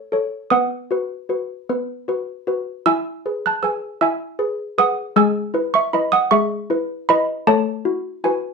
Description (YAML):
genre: classical, lullaby for handbells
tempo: 52 BPM (dotted quarters)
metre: 6/8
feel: straight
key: E major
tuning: A4 = 440 Hz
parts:
  - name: malleted handbells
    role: solo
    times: 0.0-8.5 s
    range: G#3 to F#6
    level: -18 LUFS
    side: equal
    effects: none
room: moderate studio reverb, RT60 0.6 s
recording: dark, warm production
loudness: -18 LUFS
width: side -4 dB against mid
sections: 0.0-8.5 A section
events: none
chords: 0.0 A; 0.5 B; 2.9 E; 5.2 E/G#; 7.5 F#m7/A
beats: | 0.51 1.69 | 2.86 4.02 | 5.17 6.32 | 7.46